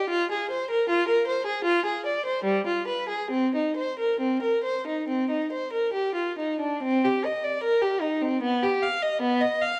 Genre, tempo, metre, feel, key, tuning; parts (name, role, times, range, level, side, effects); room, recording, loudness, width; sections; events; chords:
classical, baroque-style suite movement for unaccompanied violin; 65-78 BPM; 4/4; rubato; C minor; A4 = 439 Hz
rich violin; solo; 0.0-9.8 s; G3 to F5; -26 LUFS; equal
wet recital hall reverb, RT60 1.4 s; dark, warm production, vinyl crackle; -26 LUFS; mono
0.0-6.8 A section; 6.8-9.8 A section